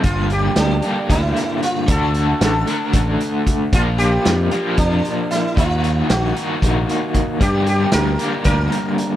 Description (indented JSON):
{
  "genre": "psychedelic rock",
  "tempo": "228 BPM (eighths)",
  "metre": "7/8",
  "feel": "straight",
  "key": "unclear",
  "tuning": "A4 = 440 Hz",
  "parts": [
    { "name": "sitar", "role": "melody", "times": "0.0-9.2 s", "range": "D4 to Bb4", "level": "-22 LUFS", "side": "right 1 dB", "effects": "tape echo" },
    { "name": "crunchy overdriven guitar", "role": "riff", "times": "0.0-9.2 s", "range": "G2 to G4", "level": "-20 LUFS", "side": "left 1 dB", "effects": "tremolo" },
    { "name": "growling fingered electric bass", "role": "bass", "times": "0.0-8.7 s", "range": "G1 to G2", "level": "-19 LUFS", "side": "equal", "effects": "overdrive" },
    { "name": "vintage drum kit", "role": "drums", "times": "0.0-9.1 s", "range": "hi-hat, kick drum, snare drum", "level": "-21 LUFS", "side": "equal", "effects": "none" }
  ],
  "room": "small room ambience",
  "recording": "none",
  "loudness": "-15 LUFS",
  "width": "side -12 dB against mid",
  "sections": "0.0-9.2 A section",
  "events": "none",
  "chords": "0.0 Gm; 1.9 D; 3.7 Bb; 5.6 Ebm; 7.4 Gm",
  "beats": "| 0.05 0.31 0.57 0.84 1.10 1.36 1.63 | 1.89 2.15 2.42 2.68 2.94 3.21 3.47 | 3.73 4.00 4.26 4.52 4.79 5.05 5.31 | 5.57 5.83 6.10 6.36 6.62 6.88 7.14 | 7.41 7.67 7.93 8.19 8.45 8.71 8.97"
}